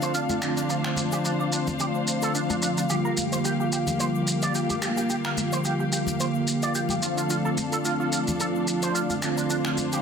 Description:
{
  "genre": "nu-disco, nu disco",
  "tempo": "109 BPM",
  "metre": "4/4",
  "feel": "swing 55% on 16ths",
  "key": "G minor",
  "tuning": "A4 = 440 Hz",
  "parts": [
    { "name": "mellow synth brass", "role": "accompaniment", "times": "0.0-10.0 s", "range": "D3 to F4", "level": "-26 LUFS", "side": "right 1 dB", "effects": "chorus, tape echo" },
    { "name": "muted studio string section", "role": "sustained chords", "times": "0.0-10.0 s", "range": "Bb3 to F5", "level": "-30 LUFS", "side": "left 3 dB", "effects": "vintage 12-bit sampler grit, low-pass filter" },
    { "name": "electric guitar with an envelope filter", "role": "riff", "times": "0.0-10.0 s", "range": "D4 to D5", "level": "-31 LUFS", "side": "right 4 dB", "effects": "analog chorus, low-pass filter, tape echo" },
    { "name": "electronic shaker and finger snaps", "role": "drums", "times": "0.0-10.0 s", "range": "none", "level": "-31 LUFS", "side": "equal", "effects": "overdrive, low-pass filter on cymbals, small room reverb, low-pass filter on perc, soft clipping on snare, low-pass filter on snare" },
    { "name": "tube shaker and congas", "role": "percussion", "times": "0.0-10.0 s", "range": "none", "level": "-35 LUFS", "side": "left 4 dB", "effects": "none" }
  ],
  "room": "moderate lush hall reverb, RT60 1.6 s",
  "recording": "dense, heavily limited modern master",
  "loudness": "-23 LUFS",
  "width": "side -6 dB against mid",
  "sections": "0.0-10.0 A section",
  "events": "filter sweep on analog polysynth 0.0-10.0",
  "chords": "0.4 Dm7; 2.9 Gm7; 7.0 F6; 9.2 Dm7"
}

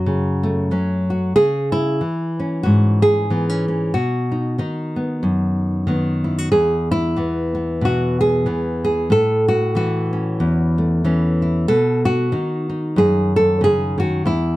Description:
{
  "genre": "folk, solo fingerstyle acoustic guitar",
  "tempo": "93 BPM",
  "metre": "4/4",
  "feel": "swing 57% on 8ths",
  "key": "unclear",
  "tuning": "A4 = 440 Hz",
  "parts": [
    { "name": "nylon-string guitar", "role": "solo", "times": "0.0-14.6 s", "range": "E2 to A4", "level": "-16 LUFS", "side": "equal", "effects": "none" }
  ],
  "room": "little or no reverb",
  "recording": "dry, close 1970s-style studio recording",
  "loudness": "-16 LUFS",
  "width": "side -17 dB against mid",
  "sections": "0.0-14.6 A section",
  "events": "none",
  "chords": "0.0 F#m; 1.4 C#m; 3.9 B; 6.5 E; 9.1 A; 11.7 B"
}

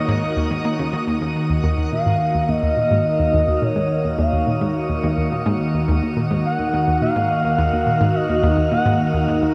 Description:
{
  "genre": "ambient, sequencer-driven space music",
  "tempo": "106 BPM",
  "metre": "4/4",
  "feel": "straight",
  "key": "Eb minor",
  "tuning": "A4 = 440 Hz",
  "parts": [
    { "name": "expressive portamento lead", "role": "melody", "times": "0.0-9.2 s", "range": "Db5 to Gb5", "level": "-25 LUFS", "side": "equal", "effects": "subtle chorus, delay" },
    { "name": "phased analog pad", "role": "sustained chords", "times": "0.0-9.5 s", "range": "Eb3 to Bb4", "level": "-24 LUFS", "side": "equal", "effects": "phaser, chorus" },
    { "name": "analog pluck", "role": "riff", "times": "0.0-9.5 s", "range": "Eb2 to Bb3", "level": "-24 LUFS", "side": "equal", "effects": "chorus, cassette tape, delay" },
    { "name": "twinkling granular texture", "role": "texture", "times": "0.0-1.4 s", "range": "Gb4", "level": "-40 LUFS", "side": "equal", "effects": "built-in reverb" }
  ],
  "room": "wet shimmer reverb, RT60 8.2 s",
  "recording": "dark, warm production",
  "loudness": "-19 LUFS",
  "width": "mono",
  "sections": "0.0-1.4 A section; 1.4-9.5 B section",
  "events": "none",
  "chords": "0.0 Ebm"
}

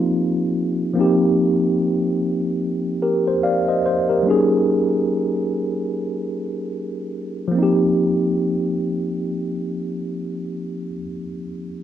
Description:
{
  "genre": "hip hop",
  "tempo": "73 BPM",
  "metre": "4/4",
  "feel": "swing 60% on 16ths",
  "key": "Eb major",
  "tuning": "A4 = 440 Hz",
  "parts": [
    { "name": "tine electric piano", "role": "solo", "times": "0.0-11.8 s", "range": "F3 to F5", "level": "-19 LUFS", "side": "equal", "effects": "medium stereo tremolo, low-pass filter" }
  ],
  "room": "light reverb, digital ambience",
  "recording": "rough home demo mix, cassette tape",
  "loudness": "-18 LUFS",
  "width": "side -10 dB against mid",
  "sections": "1.0-7.6 A section; 7.6-10.8 B section",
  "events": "none",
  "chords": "0.0 Eb69; 4.3 Gb69; 7.6 Eb69"
}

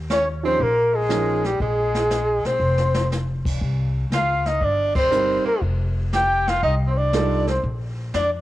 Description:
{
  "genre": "jazz, small-group swing and bop",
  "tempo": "119 BPM",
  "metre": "4/4",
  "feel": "swing 68% on 8ths",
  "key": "Bb mixolydian",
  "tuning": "A4 = 441 Hz",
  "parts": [
    { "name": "upright bass", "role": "bass", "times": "0.0-8.4 s", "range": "F1 to F2", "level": "-24 LUFS", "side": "left 1 dB", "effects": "none" },
    { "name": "breathy flugelhorn", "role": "melody", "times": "0.1-8.3 s", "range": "G4 to G5", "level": "-21 LUFS", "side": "left 2 dB", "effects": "none" },
    { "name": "bright tenor saxophone", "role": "second line", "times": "0.1-8.3 s", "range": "G3 to G4", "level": "-28 LUFS", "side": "right 7 dB", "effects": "none" },
    { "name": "jazz brush drum kit", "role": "drums", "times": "0.1-8.4 s", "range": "brushed snare drum, crash cymbal, hi-hat, kick drum, ride cymbal, snare drum", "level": "-29 LUFS", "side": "left 1 dB", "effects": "cassette tape" },
    { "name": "warm grand piano", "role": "accompaniment", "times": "0.4-1.4, 5.1-7.4 s", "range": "F3 to Bb4", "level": "-25 LUFS", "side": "right 7 dB", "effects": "none" }
  ],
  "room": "light reverb, studio reverb",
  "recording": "home recording on cassette",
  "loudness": "-19 LUFS",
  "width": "side -15 dB against mid",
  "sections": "0.0-8.4 A section",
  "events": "drum fill 2.6-3.1; band accent 4.9",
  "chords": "0.0 Eb7sus2; 1.6 Bbsus2; 3.6 Cm7; 5.6 F9; 7.6 Bb5"
}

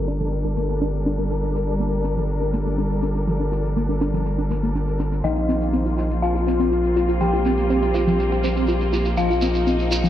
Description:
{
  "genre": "melodic techno",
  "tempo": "122 BPM",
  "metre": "4/4",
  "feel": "straight",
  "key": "G minor",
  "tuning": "A4 = 442 Hz",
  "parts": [
    { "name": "rich symphonic string section", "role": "sustained chords", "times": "0.0-10.1 s", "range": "G3 to Bb4", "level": "-27 LUFS", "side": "left 1 dB", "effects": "none" },
    { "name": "gritty driven synth bass", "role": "bass", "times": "0.0-10.1 s", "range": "G1 to Bb1", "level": "-23 LUFS", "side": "equal", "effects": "none" },
    { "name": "tight sequenced synth", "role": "arpeggios", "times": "0.1-10.1 s", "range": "F3 to F4", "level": "-25 LUFS", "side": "equal", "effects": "chorus, tape echo" },
    { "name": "shekere", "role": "percussion", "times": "0.1-10.1 s", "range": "none", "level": "-34 LUFS", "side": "right 3 dB", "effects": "none" },
    { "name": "soft octave-layered synth lead", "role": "melody", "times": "5.2-10.1 s", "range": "Eb4 to G4", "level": "-24 LUFS", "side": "left 2 dB", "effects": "chorus, tape echo" },
    { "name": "dark detuned synth bell", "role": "second line", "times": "5.2-10.1 s", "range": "Eb5 to G5", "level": "-30 LUFS", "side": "left 2 dB", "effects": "chorus, tape echo" }
  ],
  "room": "light reverb, digital ambience",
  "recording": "low-pass filter",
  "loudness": "-19 LUFS",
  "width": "side -11 dB against mid",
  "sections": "0.0-10.1 A section",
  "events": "filter sweep on synth arpeggio sound 0.0-10.1; filter sweep 0.0-10.1",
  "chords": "0.0 Gm7; 5.2 Bbsus2"
}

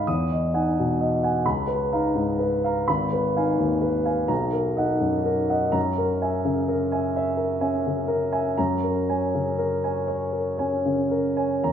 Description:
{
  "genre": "classical, impressionist solo piano",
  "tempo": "37-44 BPM (dotted quarters)",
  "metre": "6/8",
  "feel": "rubato",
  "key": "unclear",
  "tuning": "A4 = 439 Hz",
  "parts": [
    { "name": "warm concert grand piano", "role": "solo", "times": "0.0-11.7 s", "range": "G#1 to D#6", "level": "-21 LUFS", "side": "equal", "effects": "none" }
  ],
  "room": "wet recital hall reverb, RT60 1.7 s",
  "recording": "minimal, uncompressed stereo recording",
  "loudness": "-21 LUFS",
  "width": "side -8 dB against mid",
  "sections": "0.0-11.7 A section",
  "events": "none",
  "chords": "0.1 Emaj9; 1.4 C#13; 2.9 G#m6; 4.3 Bmaj7; 5.8 F#9; 8.6 F#add9"
}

